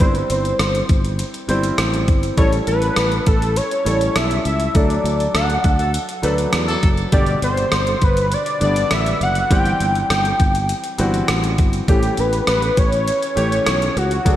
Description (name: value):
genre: 1980s-style pop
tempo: 101 BPM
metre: 4/4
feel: straight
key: unclear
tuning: A4 = 440 Hz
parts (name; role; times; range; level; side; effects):
- fat analog lead; melody; 0.0-14.4 s; F#4 to G5; -21 LUFS; equal; chorus, slapback echo
- clear baby grand piano; accompaniment; 0.0-14.4 s; B2 to C5; -23 LUFS; equal; none
- sustaining fretless electric bass; bass; 0.0-14.4 s; F#1 to E2; -21 LUFS; equal; none
- clean 12-bit digital drum machine; drums; 0.0-14.4 s; hi-hat, kick drum, rim click; -20 LUFS; equal; overdrive
- warm horn section; stabs; 5.3-6.9 s; F#3 to A4; -28 LUFS; left 1 dB; slapback echo, tape echo
room: moderate concert hall reverb, RT60 2.6 s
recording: big arena sound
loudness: -15 LUFS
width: side -12 dB against mid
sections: 0.0-14.4 A section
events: band accent 4.8-7.1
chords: 0.0 C/G; 2.4 A7; 4.8 D; 7.1 G; 9.5 C/G; 11.9 A7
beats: | 0.00 0.59 1.19 1.78 | 2.38 2.97 3.56 4.16 | 4.75 5.35 5.94 6.54 | 7.13 7.72 8.32 8.91 | 9.51 10.10 10.69 11.29 | 11.88 12.48 13.07 13.66 | 14.26